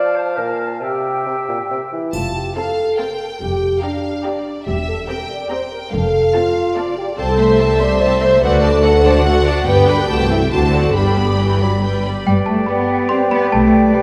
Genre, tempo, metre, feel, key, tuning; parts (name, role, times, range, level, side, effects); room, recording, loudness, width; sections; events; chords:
cinematic, playful, whimsical film cue; 143 BPM; 3/4; straight; F major, G major from 7.2 s; A4 = 440 Hz
clear oboe; second line; 0.0-1.9, 12.3-14.0 s; D5 to F5; -28 LUFS; equal
large flute ensemble; second line; 0.0-1.9, 12.3-14.0 s; G5 to A5; -27 LUFS; equal
warm clarinet; second line; 0.0-1.9, 12.2-14.0 s; G4 to D5; -26 LUFS; equal
mellow bassoon; accompaniment; 0.0-2.1, 12.3-14.0 s; Bb2 to G3; -26 LUFS; equal
clear studio violin section; melody; 2.1-14.0 s; C5 to B5; -28 LUFS; equal
mellow French horn section; sustained chords; 2.1-14.0 s; G3 to D5; -20 LUFS; equal
rich studio double bass section; bass; 2.1-13.9 s; E1 to G2; -22 LUFS; equal
warm studio cello section; bass; 2.1-14.0 s; C2 to C4; -23 LUFS; equal
triangle; percussion; 2.1-2.9 s; -43 LUFS; equal
rich studio violin section; second line; 2.6-14.0 s; B4 to C6; -26 LUFS; equal
warm studio viola section; accompaniment; 2.6-14.0 s; E3 to C5; -24 LUFS; equal
trough xylophone with rubber mallets; melody; 12.3-14.0 s; G5 to C6; -27 LUFS; equal
wet scoring stage reverb, RT60 2.0 s; heard from further back in the room; -16 LUFS; mono
0.0-2.1 A section; 2.1-12.3 B section; 12.3-14.0 C section
0.4 Bb5; 0.8 C; 2.1 F; 3.4 Gm7/F; 4.7 C7/E; 5.9 F; 7.2 Am/C; 8.4 D; 9.7 G; 10.1 C6; 10.5 D7; 10.9 G; 13.5 G/B